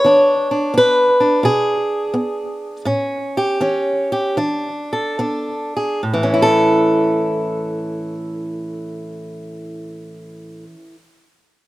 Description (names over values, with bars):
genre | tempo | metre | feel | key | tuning
acoustic country blues, solo or duo | 69-88 BPM | 4/4 | swing 68% on 8ths | A major | A4 = 440 Hz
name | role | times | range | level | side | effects
fingerpicked swing-style acoustic guitar | solo | 0.0-11.0 s | A2 to C#5 | -16 LUFS | equal | slapback echo
room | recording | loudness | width
little or no reverb | recorded outdoors, with no room sound | -16 LUFS | side -17 dB against mid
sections
0.0-6.0 A section; 6.0-9.5 B section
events
slowing down 0.1-6.0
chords
0.0 E7; 2.9 A7; 4.4 E7; 6.0 A